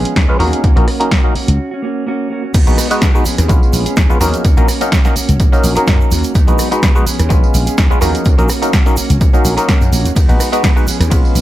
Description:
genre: filtered disco house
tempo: 126 BPM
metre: 4/4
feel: swing 54% on 16ths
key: Eb minor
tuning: A4 = 439 Hz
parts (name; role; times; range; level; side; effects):
- clav; accompaniment; 0.0-11.4 s; Gb3 to Cb5; -18 LUFS; equal; phaser, sidechain pumping, low-pass filter
- mellow electric guitar; riff; 0.0-11.4 s; F3 to Ab4; -22 LUFS; right 2 dB; sidechain pumping, low-pass filter
- slap bass; bass; 0.0-11.4 s; Bb1 to Gb2; -16 LUFS; equal; sidechain pumping, low-pass filter
- punchy analog drum machine; drums; 0.1-11.4 s; crash cymbal, hi-hat, ride cymbal, rim click, snare drum, tambourine; -20 LUFS; right 1 dB; sidechain pumping on hats, sidechain pumping on cymbals, sidechain pumping on perc
- egg shaker; percussion; 0.1-11.4 s; none; -30 LUFS; right 1 dB; sidechain pumping on perc, low-pass filter on perc
- electronic kick drum; drums; 0.2-11.2 s; none; -12 LUFS; equal; none
room: little or no reverb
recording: none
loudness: -10 LUFS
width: side -14 dB against mid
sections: 0.0-2.5 A section; 2.5-11.4 B section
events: break 1.6-2.5; drop 2.5-11.4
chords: 0.0 Db7; 0.6 Ebm7; 2.5 Abm7; 3.3 Db7; 4.4 Ebm7; 6.4 Abm7; 7.1 Db7; 8.3 Ebm7; 10.2 Abm7; 10.9 Db7

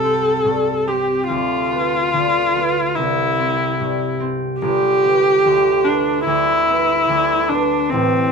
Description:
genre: classical, romantic duo for viola and harp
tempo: 73 BPM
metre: 4/4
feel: rubato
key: unclear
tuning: A4 = 440 Hz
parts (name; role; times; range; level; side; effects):
- rich viola; melody; 0.0-8.3 s; C4 to A4; -16 LUFS; left 1 dB; none
- concert harp; accompaniment; 0.0-8.3 s; G1 to C4; -21 LUFS; right 2 dB; none
room: moderate studio reverb, RT60 0.6 s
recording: minimal, uncompressed stereo recording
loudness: -15 LUFS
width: side -5 dB against mid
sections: 0.0-8.3 A section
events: none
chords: 0.0 C5; 1.3 Bdim/D; 3.0 C; 4.6 G

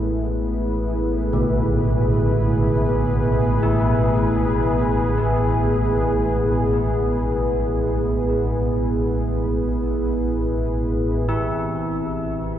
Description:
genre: dark ambient drone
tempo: free time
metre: none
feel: none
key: unclear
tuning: A4 = 438 Hz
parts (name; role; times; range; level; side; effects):
- dark analog pad; sustained chords; 0.0-12.6 s; A2 to B4; -21 LUFS; equal; chorus
- deep rumbling drone; drone; 0.0-12.6 s; A1 to A2; -23 LUFS; right 1 dB; built-in reverb, lush chorus
- old church bells; arpeggios; 1.3-12.6 s; B2 to E4; -26 LUFS; equal; tape echo
room: wet huge ambient reverb, RT60 7.3 s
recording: dreamy mix soaked in reverb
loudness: -18 LUFS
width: side -11 dB against mid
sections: 0.0-11.3 A section; 11.3-12.6 B section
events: none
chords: 0.0 E/A; 11.3 Am

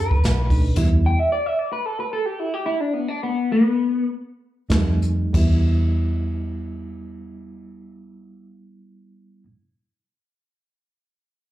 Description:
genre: straight-eighth soul blues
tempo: 91-114 BPM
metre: 4/4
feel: straight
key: E minor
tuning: A4 = 436 Hz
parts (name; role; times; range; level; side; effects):
- electric guitar through a small old amp; melody; 0.0-4.1 s; B3 to G5; -21 LUFS; left 1 dB; wide subtle chorus, slapback echo
- reed electric piano; accompaniment; 0.0-1.2, 4.7-9.5 s; G3 to E4; -28 LUFS; right 3 dB; fast tremolo, slapback echo
- vintage muted fingered electric bass; bass; 0.0-1.1, 4.7-9.4 s; B1 to F#2; -21 LUFS; equal; none
- jazz brush drum kit; drums; 0.1-0.9, 4.7-5.5 s; crash cymbal, hi-hat, kick drum, snare drum; -21 LUFS; equal; none
room: little or no reverb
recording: live gig heard through the venue's PA, club reverb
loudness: -19 LUFS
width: side -13 dB against mid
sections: 0.0-5.3 A section; 5.3-10.6 B section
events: slowing down 0.8-5.3; stop 0.8-4.7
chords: 0.0 B7#9; 0.8 Em; 4.7 F7; 5.3 Em

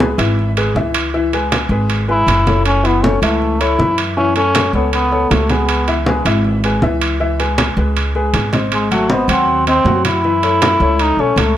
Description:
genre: Afro-Cuban jazz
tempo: 158 BPM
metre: 4/4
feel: straight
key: unclear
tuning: A4 = 442 Hz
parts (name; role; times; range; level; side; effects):
- clear grand piano; accompaniment; 0.0-11.5 s; E3 to F#5; -19 LUFS; left 3 dB; none
- upright bass; bass; 0.0-11.6 s; F#1 to F#2; -18 LUFS; equal; none
- congas; percussion; 0.0-11.6 s; none; -20 LUFS; equal; none
- timbales; percussion; 0.2-11.6 s; none; -22 LUFS; right 6 dB; none
- trombone with metal mute; melody; 2.1-6.1, 8.7-11.6 s; G#3 to E4; -16 LUFS; equal; tape echo
room: light reverb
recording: none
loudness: -12 LUFS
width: side -11 dB against mid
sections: 0.0-11.6 A section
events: none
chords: 0.0 F#m9; 5.7 C#m7; 8.7 G#7; 10.2 F#m7

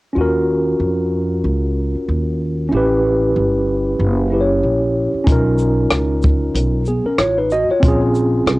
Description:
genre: hip hop, jazz-hop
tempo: 94 BPM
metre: 4/4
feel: swing 57% on 16ths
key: Eb minor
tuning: A4 = 440 Hz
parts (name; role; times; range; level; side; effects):
- tine electric piano; accompaniment; 0.1-8.6 s; B3 to D#5; -17 LUFS; equal; medium stereo tremolo
- upright bass; bass; 0.2-8.6 s; Gb1 to F2; -19 LUFS; equal; none
- compact cocktail drum kit; drums; 5.3-8.6 s; hi-hat, kick drum, rim click, shaker; -16 LUFS; equal; vintage 12-bit sampler grit
room: moderate booth ambience, RT60 0.2 s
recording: home recording on cassette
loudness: -14 LUFS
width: side -20 dB against mid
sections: 0.2-8.6 A section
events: none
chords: 0.2 Ebm9; 2.7 A9; 5.3 Bmaj9#11; 7.8 Bbm9

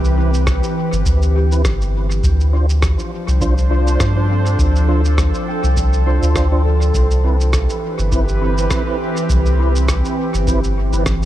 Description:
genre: ambient dub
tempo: 102 BPM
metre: 4/4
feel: swing 56% on 16ths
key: unclear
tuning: A4 = 440 Hz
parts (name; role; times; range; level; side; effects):
- warbly tape-like pad; sustained chords; 0.0-11.3 s; E3 to C5; -22 LUFS; right 1 dB; chorus, built-in reverb
- soft dub sub bass; bass; 0.0-11.3 s; G1 to G2; -15 LUFS; equal; none
- electronic cabasa and rim click; drums; 0.0-11.3 s; none; -27 LUFS; right 1 dB; studio reverb, dub echo
- mellow tonewheel organ; stabs; 0.2-11.0 s; C4 to C5; -25 LUFS; right 2 dB; chorus vibrato, slow rotary speaker, dub echo
- electronic kick drum; drums; 0.5-11.2 s; none; -21 LUFS; equal; studio reverb
- concert harp; arpeggios; 1.4-11.3 s; C4 to G5; -30 LUFS; left 1 dB; dub echo
room: little or no reverb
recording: none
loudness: -14 LUFS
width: side -13 dB against mid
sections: 0.0-11.3 A section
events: none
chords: 0.0 Cmaj7; 2.2 Dm7; 6.9 Cmaj7

